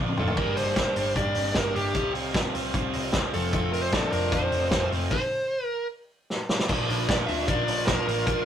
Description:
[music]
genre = jangly indie pop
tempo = 152 BPM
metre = 4/4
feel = straight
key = unclear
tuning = A4 = 445 Hz
[part]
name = crunchy overdriven guitar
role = accompaniment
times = 0.0-8.4 s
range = Bb2 to G4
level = -30 LUFS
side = right 3 dB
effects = none
[part]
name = twelve-string electric guitar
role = arpeggios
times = 0.0-8.4 s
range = Bb2 to G4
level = -35 LUFS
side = left 4 dB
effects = phaser
[part]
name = vintage muted picked electric bass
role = bass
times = 0.0-8.4 s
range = F1 to D2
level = -32 LUFS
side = equal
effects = none
[part]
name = vintage drum kit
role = drums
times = 0.1-8.4 s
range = crash cymbal, hi-hat, kick drum, ride cymbal, snare drum, toms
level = -27 LUFS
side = equal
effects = none
[part]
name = dark smooth lead guitar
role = melody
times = 0.2-8.4 s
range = G4 to E5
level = -28 LUFS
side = equal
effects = overdrive
[part]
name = clear flugelhorn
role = second line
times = 3.5-8.4 s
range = B3 to F4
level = -35 LUFS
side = left 5 dB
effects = none
[sound]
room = moderate studio ambience, RT60 0.5 s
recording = rough rehearsal-room recording, tube saturation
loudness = -23 LUFS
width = side -9 dB against mid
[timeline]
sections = 0.4-6.7 A section; 6.7-8.4 B section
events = drum fill 0.0-0.4, 6.3-6.7; stop 5.1-6.7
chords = 0.4 Gm; 2.0 Csus4; 3.3 F; 5.1 N.C.; 6.7 Bb

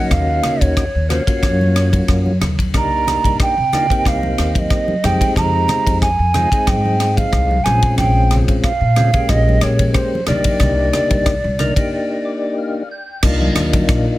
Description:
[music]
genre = electric jazz fusion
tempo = 91 BPM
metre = 4/4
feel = swing 54% on 16ths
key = C phrygian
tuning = A4 = 440 Hz
[part]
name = mellow hollow jazz flute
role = melody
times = 0.0-12.5 s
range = C5 to Bb5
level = -19 LUFS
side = right 2 dB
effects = none
[part]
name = percussive tonewheel organ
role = accompaniment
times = 0.0-14.2 s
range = Ab3 to G5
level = -22 LUFS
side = left 2 dB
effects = slow rotary speaker, chorus vibrato
[part]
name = upright bass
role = bass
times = 0.1-14.0 s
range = Bb1 to C3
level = -18 LUFS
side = equal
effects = none
[part]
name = tight funk drum kit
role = drums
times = 0.1-14.1 s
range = crash cymbal, kick drum, ride cymbal, rim click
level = -19 LUFS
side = equal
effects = none
[part]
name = congas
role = percussion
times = 0.1-13.9 s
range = none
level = -24 LUFS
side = equal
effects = none
[sound]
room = small room ambience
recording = none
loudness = -14 LUFS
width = side -16 dB against mid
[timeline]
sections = 0.0-13.2 A section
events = break 11.9-13.2; tonewheel organ fill 11.9-13.2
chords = 0.0 Ebm9; 2.7 Cm9; 5.0 Fm9; 7.7 Bbm9; 10.3 Cm9; 13.2 Cm11

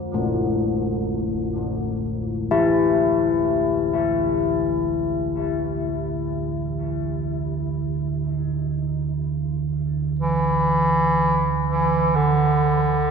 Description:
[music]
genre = dark ambient drone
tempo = free time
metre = none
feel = none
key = D minor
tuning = A4 = 445 Hz
[part]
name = carillon bells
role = arpeggios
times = 0.0-8.3 s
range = A2 to E4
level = -22 LUFS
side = left 4 dB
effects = diffuse ambient delay
[part]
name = deep rumbling drone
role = drone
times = 0.0-13.1 s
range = D2 to D3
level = -26 LUFS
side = right 5 dB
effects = built-in reverb
[part]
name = warm bass clarinet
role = melody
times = 10.2-13.1 s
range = D3 to E3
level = -18 LUFS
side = right 1 dB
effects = diffuse ambient delay
[sound]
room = wet cathedral reverb, RT60 4.9 s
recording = none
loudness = -20 LUFS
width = side -6 dB against mid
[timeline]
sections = 0.0-13.1 A section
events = fade-in on synth drone 0.0-13.1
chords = 0.0 Dmadd9; 10.2 Dsus2

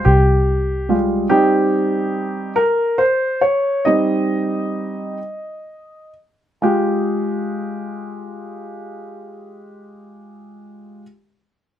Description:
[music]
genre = six-eight pop ballad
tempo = 41-48 BPM (dotted quarters)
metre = 6/8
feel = straight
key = F minor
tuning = A4 = 440 Hz
[part]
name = warm baby grand piano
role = accompaniment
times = 0.0-11.0 s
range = G3 to Eb5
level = -17 LUFS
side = equal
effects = none
[part]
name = vintage muted fingered electric bass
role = bass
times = 0.1-1.3 s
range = C2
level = -16 LUFS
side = equal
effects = none
[sound]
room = moderate small room ambience, RT60 0.5 s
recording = none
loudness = -16 LUFS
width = side -11 dB against mid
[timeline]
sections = 0.0-6.6 A section; 6.6-9.6 B section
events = grand piano solo 0.0-6.6; slowing down 1.3-6.6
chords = 0.0 Fmadd9; 1.3 Cm; 6.6 Fmadd9

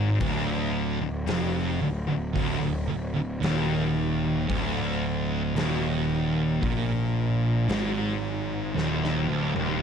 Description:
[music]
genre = stoner and doom metal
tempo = 56 BPM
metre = 4/4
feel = straight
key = D phrygian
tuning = A4 = 438 Hz
[part]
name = thick fuzz guitar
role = riff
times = 0.0-9.8 s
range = D2 to Bb2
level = -29 LUFS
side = left 8 dB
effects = distortion
[part]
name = thick fuzz guitar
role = riff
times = 0.0-9.8 s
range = D2 to Bb2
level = -28 LUFS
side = right 8 dB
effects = distortion
[part]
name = fuzz picked electric bass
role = bass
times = 0.0-9.8 s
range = D1 to Bb1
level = -31 LUFS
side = left 1 dB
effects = overdrive
[part]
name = big rock drum kit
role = drums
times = 0.2-9.8 s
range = hi-hat, kick drum, snare drum, toms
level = -34 LUFS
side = left 1 dB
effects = none
[sound]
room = light reverb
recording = dark, warm production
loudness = -24 LUFS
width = side -7 dB against mid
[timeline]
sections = 0.0-9.8 A section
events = drum fill 8.8-9.8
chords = 0.0 Dm

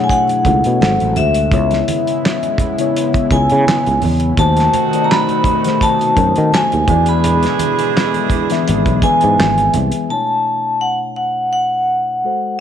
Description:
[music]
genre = R&B, neo-soul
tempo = 84 BPM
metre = 4/4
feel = swing 53% on 16ths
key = B dorian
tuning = A4 = 440 Hz
[part]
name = vibraphone with medium hard mallets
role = melody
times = 0.0-12.6 s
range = E5 to B5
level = -16 LUFS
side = equal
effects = none
[part]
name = mellow tine electric piano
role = accompaniment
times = 0.0-12.6 s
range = B2 to E5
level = -20 LUFS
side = left 9 dB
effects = medium stereo tremolo
[part]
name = chorused pulse-width pad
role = sustained chords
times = 0.0-10.1 s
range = B2 to C#5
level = -24 LUFS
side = right 2 dB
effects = none
[part]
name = cloth-damped thuddy drum kit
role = drums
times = 0.1-10.1 s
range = handclaps, hi-hat, kick drum, snare drum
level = -19 LUFS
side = right 1 dB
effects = none
[part]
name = congas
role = percussion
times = 0.1-9.9 s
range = none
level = -27 LUFS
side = right 10 dB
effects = none
[part]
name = sustaining fretless electric bass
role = bass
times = 0.5-9.9 s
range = G#1 to D#3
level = -16 LUFS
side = right 1 dB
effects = tube saturation
[part]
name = edgy saxophone section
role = stabs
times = 4.4-9.7 s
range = D#3 to G#4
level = -22 LUFS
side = right 14 dB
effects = none
[sound]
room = moderate echo chamber reverb, RT60 2.4 s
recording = 1960s-style stereo with parts hard left and right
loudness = -12 LUFS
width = side -9 dB against mid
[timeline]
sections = 0.0-10.1 A section; 10.1-12.6 B section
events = none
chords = 0.0 Bm11; 0.8 G#7b9; 1.5 C#m7; 4.4 B7b9; 6.9 E7; 10.1 Bm11

